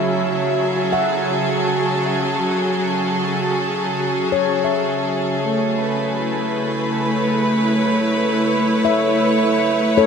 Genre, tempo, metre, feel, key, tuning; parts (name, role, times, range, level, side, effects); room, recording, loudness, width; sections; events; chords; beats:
ambient; 53 BPM; 3/4; straight; F# minor; A4 = 440 Hz
clear studio string section; sustained chords; 0.0-10.1 s; F#3 to E5; -18 LUFS; equal
handpan; arpeggios; 0.0-10.1 s; A4 to F#5; -23 LUFS; left 2 dB; ping-pong delay
organ-like drone; drone; 0.0-10.1 s; C#3 to F#3; -28 LUFS; right 1 dB; ensemble chorus, built-in reverb
wet huge ambient reverb, RT60 7.8 s; -17 LUFS; side -6 dB against mid
0.0-10.1 A section
0.0 F#madd9; 5.4 A
0.92 | 2.05 3.18 4.31 | 5.44 6.58 7.71 | 8.84 9.97